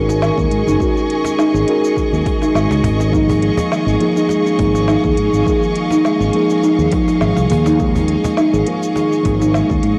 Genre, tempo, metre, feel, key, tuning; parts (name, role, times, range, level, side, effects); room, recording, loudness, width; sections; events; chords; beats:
organic downtempo; 103 BPM; 4/4; swing 54% on 16ths; A4 = 442 Hz
muted felt-like synth keys; accompaniment; 0.0-10.0 s; F3 to Bb4; -21 LUFS; equal; chorus, sidechain pumping, low-pass filter, analog delay
rich studio string section; sustained chords; 0.0-10.0 s; Ab4 to Db6; -26 LUFS; equal; sidechain pumping
kalimba; arpeggios; 0.0-9.8 s; Eb3 to Ab4; -20 LUFS; equal; analog delay
fretless electric bass; bass; 0.0-9.9 s; Gb1 to Ab2; -20 LUFS; equal; transformer saturation, sidechain pumping
organic electronic drum kit; drums; 0.1-10.0 s; cabasa, hi-hat, snare drum; -28 LUFS; equal; cassette tape
cajon; percussion; 0.1-10.0 s; -27 LUFS; equal
electronic kick drum; drums; 0.4-9.8 s; -24 LUFS; equal; overdrive, cassette tape
moderate booth ambience, RT60 0.2 s; home recording on cassette; -15 LUFS; mono
0.0-10.0 A section
filter sweep on synth keys 0.0-10.0
0.0 Ab7sus4; 3.1 Dbadd9/Ab
0.22 | 0.81 1.39 1.97 2.55 | 3.14 3.72 4.30 4.88 | 5.47 6.05 6.63 7.21 | 7.80 8.38 8.96 9.54